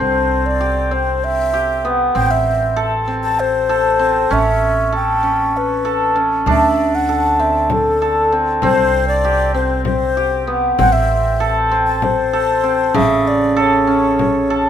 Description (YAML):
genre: contemporary instrumental, chamber music in an uneven meter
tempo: 194 BPM (eighths)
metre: 7/8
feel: straight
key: unclear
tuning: A4 = 440 Hz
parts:
  - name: mellow baroque flute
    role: melody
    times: 0.0-14.7 s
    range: A4 to A5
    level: -18 LUFS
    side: left 2 dB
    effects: none
  - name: hammered dulcimer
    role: arpeggios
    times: 0.0-14.7 s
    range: C#3 to A4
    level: -16 LUFS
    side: equal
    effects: none
  - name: upright bass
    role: bass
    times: 0.0-14.7 s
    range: A1 to D2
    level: -23 LUFS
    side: right 2 dB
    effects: none
  - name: frame drum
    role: percussion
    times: 6.5-14.5 s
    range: none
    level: -23 LUFS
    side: left 6 dB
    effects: none
room: light reverb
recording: close, detailed microphones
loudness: -13 LUFS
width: side -9 dB against mid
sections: 0.0-14.7 A section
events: none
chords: 0.0 Cmaj7; 2.2 Am; 4.3 A7; 6.5 D5; 8.6 C5; 10.8 Am; 13.0 A